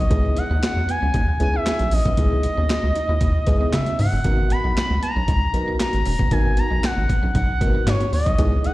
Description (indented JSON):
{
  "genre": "early-eighties boogie funk",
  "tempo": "116 BPM",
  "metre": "4/4",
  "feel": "straight",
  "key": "G# minor",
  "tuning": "A4 = 441 Hz",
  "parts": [
    { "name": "expressive portamento lead", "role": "melody", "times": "0.0-8.7 s", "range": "C#5 to B5", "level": "-25 LUFS", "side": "equal", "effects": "chorus, slapback echo, analog delay" },
    { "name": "clean electric guitar", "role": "riff", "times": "0.0-8.7 s", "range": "B3 to E4", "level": "-35 LUFS", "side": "right 5 dB", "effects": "wide subtle chorus, slapback echo" },
    { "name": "rubbery square bass", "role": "bass", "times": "0.0-8.7 s", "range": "E1 to C#3", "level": "-20 LUFS", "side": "equal", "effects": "none" },
    { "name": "FM electric piano with tremolo", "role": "accompaniment", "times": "0.1-8.7 s", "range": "A#3 to A#4", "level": "-28 LUFS", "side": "left 1 dB", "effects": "phaser, slapback echo" },
    { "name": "breakbeat sampler-style drum kit", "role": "drums", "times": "0.1-8.7 s", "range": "handclaps, hi-hat, kick drum, snare drum", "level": "-23 LUFS", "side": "equal", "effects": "overdrive" }
  ],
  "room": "little or no reverb",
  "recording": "live gig heard through the venue's PA, recital hall reverb",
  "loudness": "-18 LUFS",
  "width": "side -18 dB against mid",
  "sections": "0.0-8.7 A section",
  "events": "none",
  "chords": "0.1 C#m9; 4.2 G#m9",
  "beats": "| 0.11 0.63 1.14 1.66 | 2.18 2.69 3.21 3.73 | 4.25 4.76 5.28 5.80 | 6.32 6.83 7.35 7.87 | 8.38"
}